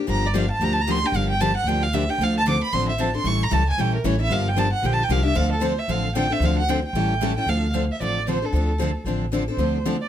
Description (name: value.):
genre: acoustic string swing (jazz manouche).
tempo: 227 BPM.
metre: 4/4.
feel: swing 57% on 8ths.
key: D minor.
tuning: A4 = 440 Hz.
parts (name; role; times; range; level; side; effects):
picked steel-string acoustic guitar; accompaniment; 0.0-10.0 s; D3 to A4; -26 LUFS; left 5 dB; none.
warm violin; melody; 0.1-10.1 s; A4 to D6; -25 LUFS; right 2 dB; slapback echo.
picked steel-string acoustic guitar; accompaniment; 0.1-10.0 s; D3 to A4; -30 LUFS; right 6 dB; none.
upright bass; bass; 0.1-10.0 s; G1 to D2; -24 LUFS; equal; none.
room: light reverb.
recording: close, detailed microphones.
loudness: -20 LUFS.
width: side -10 dB against mid.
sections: 0.0-7.5 A section; 7.5-10.1 B section.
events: violin solo 0.0-7.5.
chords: 0.0 Gm7; 2.2 Dm7; 3.2 A7; 4.3 Gm7; 5.4 Dm7; 6.9 A7; 7.5 Dm7.